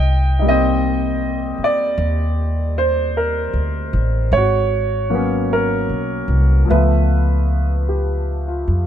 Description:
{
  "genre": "jazz ballad",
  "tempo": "51 BPM",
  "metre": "4/4",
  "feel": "swing 66% on 8ths",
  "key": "unclear",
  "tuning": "A4 = 442 Hz",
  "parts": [
    { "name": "warm grand piano", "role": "accompaniment", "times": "0.0-8.9 s", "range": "F3 to G5", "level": "-19 LUFS", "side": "equal", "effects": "none" },
    { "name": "upright bass", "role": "bass", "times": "0.0-8.9 s", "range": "Ab1 to F2", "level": "-18 LUFS", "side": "equal", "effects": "none" }
  ],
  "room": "little or no reverb",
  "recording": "close, detailed microphones",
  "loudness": "-16 LUFS",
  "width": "side -10 dB against mid",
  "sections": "0.0-8.9 A section",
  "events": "none",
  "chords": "0.0 Cm9; 4.3 Abm11; 6.7 Db7alt",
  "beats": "0.83 1.99 3.16 | 4.33 5.50 6.68 7.87"
}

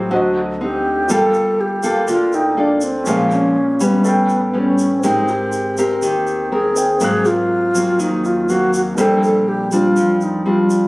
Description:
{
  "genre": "bossa nova",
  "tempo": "122 BPM",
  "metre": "4/4",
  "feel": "straight",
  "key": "G minor",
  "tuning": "A4 = 441 Hz",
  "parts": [
    { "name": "mellow alto flute", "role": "melody", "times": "0.0-10.9 s", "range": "B3 to A4", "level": "-17 LUFS", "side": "equal", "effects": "none" },
    { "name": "nylon-string guitar", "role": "accompaniment", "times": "0.0-10.9 s", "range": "Ab2 to Bb4", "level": "-18 LUFS", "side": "left 1 dB", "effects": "none" },
    { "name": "warm concert grand piano", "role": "accompaniment", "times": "0.0-10.9 s", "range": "C4 to Gb6", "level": "-22 LUFS", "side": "equal", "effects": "none" },
    { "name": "upright bass", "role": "bass", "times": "0.0-10.9 s", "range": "G1 to F2", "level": "-29 LUFS", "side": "equal", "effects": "none" },
    { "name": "egg shaker", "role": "percussion", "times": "1.1-10.9 s", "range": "none", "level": "-30 LUFS", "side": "right 1 dB", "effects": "none" }
  ],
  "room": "light reverb",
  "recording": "recorded on a phone in the room, studio reverb",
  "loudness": "-14 LUFS",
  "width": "side -22 dB against mid",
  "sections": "0.0-1.1 A section; 1.1-10.9 A section",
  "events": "none",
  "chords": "0.1 D7b9; 1.1 Gm9; 3.1 Bbm7; 4.1 A9; 5.0 Abmaj9; 7.0 Ab9; 9.0 Bb69",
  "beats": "0.11 0.60 | 1.10 1.59 2.08 2.58 | 3.07 3.56 4.05 4.54 | 5.04 5.53 6.02 6.51 | 7.01 7.50 7.99 8.48 | 8.98 9.47 9.96 10.45"
}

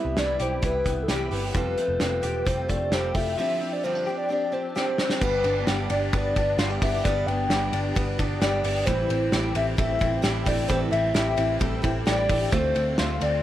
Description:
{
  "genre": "jangly indie pop",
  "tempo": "131 BPM",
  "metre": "4/4",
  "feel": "straight",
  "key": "unclear",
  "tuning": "A4 = 440 Hz",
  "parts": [
    { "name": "hollow clarinet-like synth lead", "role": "melody", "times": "0.0-13.4 s", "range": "G4 to G5", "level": "-27 LUFS", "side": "left 1 dB", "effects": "chorus, tape echo" },
    { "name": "picked steel-string acoustic guitar", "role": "accompaniment", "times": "0.0-13.4 s", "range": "G2 to B4", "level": "-32 LUFS", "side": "right 6 dB", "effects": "none" },
    { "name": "direct-recorded clean electric guitar", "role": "arpeggios", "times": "0.0-13.4 s", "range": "E3 to G4", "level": "-31 LUFS", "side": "left 3 dB", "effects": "ensemble chorus, tape echo" },
    { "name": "vintage muted picked electric bass", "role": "bass", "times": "0.0-13.4 s", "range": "E1 to D2", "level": "-29 LUFS", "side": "equal", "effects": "none" },
    { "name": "loose indie drum kit", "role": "drums", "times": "0.2-13.3 s", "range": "crash cymbal, hi-hat, kick drum, ride cymbal, snare drum", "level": "-28 LUFS", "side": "equal", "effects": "none" }
  ],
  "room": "light reverb, small room ambience",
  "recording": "vinyl crackle",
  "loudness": "-22 LUFS",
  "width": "side -12 dB against mid",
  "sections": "0.0-5.2 A section; 5.2-13.4 B section",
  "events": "drum fill 4.8-5.2",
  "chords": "0.0 Cmaj7; 1.6 Fadd9; 3.4 G7sus4; 5.2 G; 8.9 Am7; 12.5 Dm7",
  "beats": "0.17 0.63 1.09 | 1.55 2.01 2.47 2.93 | 3.38 3.84 4.30 4.76 | 5.22 5.67 6.13 6.59 | 7.05 7.50 7.96 8.42 | 8.87 9.33 9.79 10.24 | 10.70 11.16 11.61 12.07 | 12.53 12.98"
}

